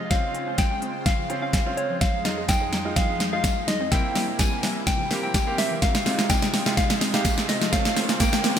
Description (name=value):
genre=dance-pop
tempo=126 BPM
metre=4/4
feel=straight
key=F minor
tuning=A4 = 440 Hz
part: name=soft struck synth lead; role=melody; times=0.0-8.6 s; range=Db5 to Ab5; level=-28 LUFS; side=left 1 dB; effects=chorus, ping-pong delay
part: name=supersaw pad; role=sustained chords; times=0.0-8.6 s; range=F2 to C5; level=-33 LUFS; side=right 1 dB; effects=phaser, sidechain pumping
part: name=wide unison pluck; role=arpeggios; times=0.0-8.6 s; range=C3 to F5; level=-35 LUFS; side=left 4 dB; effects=sidechain pumping, ping-pong delay
part: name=bright concert grand piano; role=accompaniment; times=0.1-8.5 s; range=C3 to Ab4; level=-32 LUFS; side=right 2 dB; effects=sidechain pumping
part: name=pop drum kit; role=drums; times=0.1-8.6 s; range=hi-hat, kick drum, shaker, snare drum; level=-23 LUFS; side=equal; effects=gated reverb
part: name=riser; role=sound effects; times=3.9-8.6 s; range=none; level=-33 LUFS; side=right 1 dB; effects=none
part: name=tambourine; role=percussion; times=2.5-8.3 s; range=none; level=-38 LUFS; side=left 5 dB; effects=none
room=moderate lush hall reverb, RT60 1.9 s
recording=bright 1980s-style digital production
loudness=-21 LUFS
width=side -9 dB against mid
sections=0.0-8.6 A section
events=build-up 0.0-8.6; drum fill 0.0-8.6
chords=0.1 Dbmaj7; 2.0 Fm7; 3.9 C7; 5.8 Fm7/C; 7.7 Dbmaj7